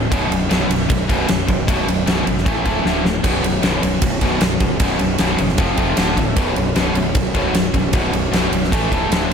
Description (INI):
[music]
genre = hard rock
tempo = 154 BPM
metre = 4/4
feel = straight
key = unclear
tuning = A4 = 441 Hz
[part]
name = tight distorted guitar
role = riff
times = 0.0-9.3 s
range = B1 to A3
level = -22 LUFS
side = left 8 dB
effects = distortion, slapback echo
[part]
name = tight distorted guitar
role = riff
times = 0.0-9.3 s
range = B1 to A3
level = -22 LUFS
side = right 9 dB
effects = distortion
[part]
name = fuzz fingered electric bass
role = bass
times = 0.0-9.3 s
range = B0 to A1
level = -24 LUFS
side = equal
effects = overdrive
[part]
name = huge arena drum kit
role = drums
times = 0.1-9.3 s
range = kick drum, ride cymbal, snare drum, splash cymbal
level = -18 LUFS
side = equal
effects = none
[part]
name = tonewheel organ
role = sustained chords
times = 3.2-9.3 s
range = F3 to E5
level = -30 LUFS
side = left 1 dB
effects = none
[sound]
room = moderate concert hall reverb, RT60 2.0 s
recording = big arena sound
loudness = -15 LUFS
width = side -6 dB against mid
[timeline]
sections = 0.0-9.3 A section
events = drum fill 2.9-3.2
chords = 0.1 B5; 2.5 A5; 2.9 D5; 3.2 B5; 5.6 F5; 6.0 D5; 6.4 B5; 8.7 A5